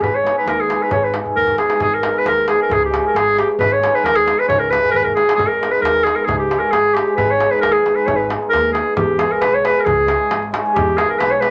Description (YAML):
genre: balkan folk, Balkan wedding band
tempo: 134 BPM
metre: 2/4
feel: swing 54% on 16ths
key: G# harmonic minor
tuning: A4 = 441 Hz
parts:
  - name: clear clarinet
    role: melody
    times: 0.0-11.5 s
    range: G4 to C#5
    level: -18 LUFS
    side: equal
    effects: none
  - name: cimbalom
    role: accompaniment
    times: 0.0-11.5 s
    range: G#3 to G#4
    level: -22 LUFS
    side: equal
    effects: none
  - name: upright bass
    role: bass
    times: 0.0-11.5 s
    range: G#1 to E2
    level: -31 LUFS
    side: equal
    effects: none
  - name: darbuka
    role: percussion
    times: 0.0-11.5 s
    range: none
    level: -27 LUFS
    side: equal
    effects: none
room: moderate studio reverb, RT60 0.6 s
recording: none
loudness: -16 LUFS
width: mono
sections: 0.0-1.8 A section; 1.8-9.0 A section; 9.0-11.5 B section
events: drum fill 1.2-1.8, 4.8-5.4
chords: 0.0 G#m; 2.7 C#m; 3.6 G#m; 4.5 C#m; 5.4 G#m; 6.3 C#m; 7.2 G#m; 9.0 E; 9.9 C#m; 10.8 E